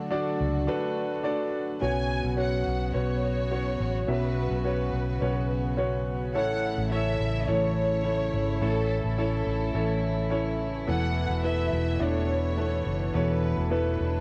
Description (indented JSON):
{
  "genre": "piano-driven pop",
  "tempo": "106 BPM",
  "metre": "4/4",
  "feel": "straight",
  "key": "unclear",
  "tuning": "A4 = 440 Hz",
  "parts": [
    { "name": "clear grand piano", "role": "accompaniment", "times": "0.0-14.2 s", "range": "A2 to E5", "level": "-31 LUFS", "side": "equal", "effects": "none" },
    { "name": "warm studio string section", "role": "sustained chords", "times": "0.0-14.2 s", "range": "B2 to F#4", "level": "-38 LUFS", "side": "equal", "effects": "none" },
    { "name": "vintage muted fingered electric bass", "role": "bass", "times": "0.4-14.2 s", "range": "E1 to C#2", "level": "-31 LUFS", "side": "equal", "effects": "transformer saturation" },
    { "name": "warm studio violin section", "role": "melody", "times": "1.8-14.2 s", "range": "A4 to G#5", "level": "-36 LUFS", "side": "equal", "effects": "cassette tape" }
  ],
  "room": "light reverb, studio reverb",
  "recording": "home recording on cassette",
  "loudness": "-27 LUFS",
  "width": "mono",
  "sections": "0.0-1.8 A section; 1.8-14.2 B section",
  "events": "none",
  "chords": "0.0 D; 1.8 Bsus2; 6.3 A; 10.9 Esus4"
}